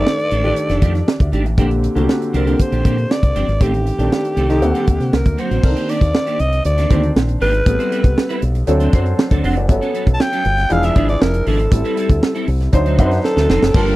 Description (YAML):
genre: polished 1980s jazz-funk pop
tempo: 118 BPM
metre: 4/4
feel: straight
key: unclear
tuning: A4 = 439 Hz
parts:
  - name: breathy alto saxophone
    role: melody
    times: 0.0-14.0 s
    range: G4 to A5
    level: -20 LUFS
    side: equal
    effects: none
  - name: warm grand piano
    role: accompaniment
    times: 0.0-14.0 s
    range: D3 to A5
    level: -22 LUFS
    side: left 1 dB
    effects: lush chorus
  - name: clean electric guitar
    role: riff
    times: 0.0-14.0 s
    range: Eb3 to C5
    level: -24 LUFS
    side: right 2 dB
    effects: ensemble chorus
  - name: fingered electric bass with an envelope filter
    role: bass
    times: 0.0-13.9 s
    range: E1 to C3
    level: -18 LUFS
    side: equal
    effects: none
  - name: tight funk drum kit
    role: drums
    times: 0.1-14.0 s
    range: crash cymbal, hi-hat, kick drum, snare drum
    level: -16 LUFS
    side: equal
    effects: none
  - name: warm studio string section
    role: sustained chords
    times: 13.7-14.0 s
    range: F5 to A5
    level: -29 LUFS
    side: left 4 dB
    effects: none
room: little or no reverb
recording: dry, close 1970s-style studio recording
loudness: -14 LUFS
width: side -17 dB against mid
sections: 0.0-5.6 A section; 5.6-13.7 B section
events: drum fill 13.2-13.7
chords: 0.0 F13; 1.6 Bb69; 3.6 Am7b5; 4.6 D7b13; 5.6 Cm9; 7.7 Am9; 8.7 D7; 9.7 Gmaj9#11; 10.7 E7b9; 11.7 Am7; 12.7 D7b9